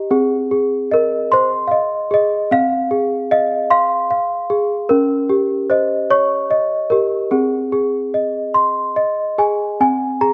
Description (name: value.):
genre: children's music, lullaby.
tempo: 50 BPM (dotted quarters).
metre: 6/8.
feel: rubato.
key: Ab major.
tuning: A4 = 440 Hz.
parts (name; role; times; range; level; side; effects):
worn celesta; solo; 0.0-10.3 s; C4 to Db6; -17 LUFS; equal; none.
room: light reverb.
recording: none.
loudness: -17 LUFS.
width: mono.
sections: 0.0-9.8 A section.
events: none.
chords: 0.1 Ab; 2.5 Fm; 4.9 Eb7; 7.3 Ab.